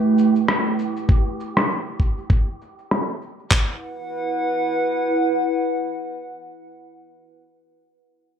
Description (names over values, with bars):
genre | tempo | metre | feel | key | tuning
organic downtempo | 99 BPM | 4/4 | swing 57% on 16ths | E minor | A4 = 435 Hz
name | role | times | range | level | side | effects
warbly tape-like pad | sustained chords | 0.0-6.7 s | A3 to F#5 | -21 LUFS | right 2 dB | chorus, built-in reverb, sidechain pumping
wind-like tuned noise texture | texture | 0.0-1.1 s | G4 | -34 LUFS | right 2 dB | built-in reverb, analog chorus
electronic shaker and rim click | drums | 0.2-3.5 s | none | -21 LUFS | left 1 dB | low-pass filter on perc, low-pass filter on snare, low-pass filter on room, gated reverb
dusty soul sampler-style drum kit | drums | 1.1-3.7 s | handclaps, kick drum | -17 LUFS | equal | gated reverb
room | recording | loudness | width
moderate lush hall reverb, RT60 1.7 s | bright 1980s-style digital production | -19 LUFS | side -8 dB against mid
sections
0.0-3.5 A section; 3.5-5.9 B section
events
filter sweep on drum 0.0-3.5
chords
0.0 A5; 3.5 E5